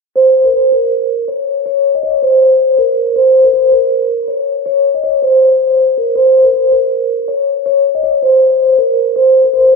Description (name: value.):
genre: hip hop.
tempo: 160 BPM.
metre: 4/4.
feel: half-time.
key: Bb minor.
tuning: A4 = 440 Hz.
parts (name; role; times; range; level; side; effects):
vibraphone with soft mallets; melody; 0.2-9.8 s; Bb4 to Eb5; -9 LUFS; equal; none.
room: wet plate reverb, RT60 2.9 s.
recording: dreamy mix soaked in reverb, low-pass filter.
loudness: -9 LUFS.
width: side -4 dB against mid.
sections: 0.2-9.8 A section.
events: filter sweep 0.2-9.8.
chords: none.